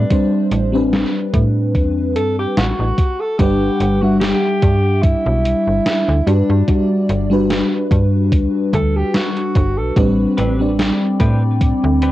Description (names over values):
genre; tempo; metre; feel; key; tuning
vaporwave; 73 BPM; 4/4; swing 54% on 16ths; unclear; A4 = 440 Hz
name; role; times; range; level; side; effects
breathy alto saxophone; melody; 0.0-10.0 s; D4 to A4; -22 LUFS; right 1 dB; cassette tape, tape echo
FM electric piano with soft pad layer; accompaniment; 0.0-12.1 s; G3 to F#5; -18 LUFS; left 1 dB; analog chorus, cassette tape, tape echo
slap-like FM bass; bass; 0.0-12.1 s; G1 to A2; -18 LUFS; equal; none
electronic kick drum; drums; 0.1-11.8 s; none; -16 LUFS; equal; cassette tape
gated 80s digital drum machine; drums; 0.1-12.1 s; hi-hat, snare drum; -22 LUFS; right 1 dB; gated reverb, gated reverb snare, cassette tape
warbly tape-like pad; sustained chords; 10.3-12.1 s; C4 to D6; -24 LUFS; left 1 dB; chorus, built-in reverb, vintage 12-bit sampler grit, cassette tape, plate reverb
clean electric guitar; riff; 10.4-12.1 s; C4 to B4; -26 LUFS; left 2 dB; lush chorus, cassette tape, tape echo
room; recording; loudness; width
light reverb; home recording on cassette; -14 LUFS; side -15 dB against mid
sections
0.0-12.1 A section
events
none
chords
0.0 Am11; 3.0 Gmaj7; 10.0 Am11